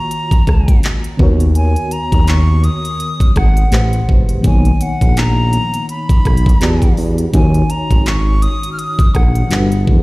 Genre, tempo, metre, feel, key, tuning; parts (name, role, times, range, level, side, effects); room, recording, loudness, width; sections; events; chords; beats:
contemporary R&B; 83 BPM; 4/4; swing 58% on 16ths; A4 = 441 Hz
breathy silver concert flute; melody; 0.0-9.9 s; F#5 to F6; -22 LUFS; left 1 dB; digital delay
FM electric piano with tremolo; accompaniment; 0.0-10.0 s; A2 to D5; -20 LUFS; left 1 dB
trap drum kit; drums; 0.1-10.0 s; handclaps, hi-hat, kick drum, rim click; -13 LUFS; equal
smooth synth bass; bass; 0.5-10.0 s; Gb1 to E2; -13 LUFS; equal
little or no reverb; played on a big sound system in a bare room, stone room reverb; -11 LUFS; side -21 dB against mid
0.0-10.0 A section
0.0 Ebm7; 1.2 Bmaj7/D#; 3.7 Am7; 4.4 Bmaj7; 6.6 Em9; 7.3 Ebm7; 9.5 Gmaj7
0.11 0.83 | 1.55 2.28 3.00 3.72 | 4.45 5.17 5.89 6.61 | 7.34 8.06 8.78 9.51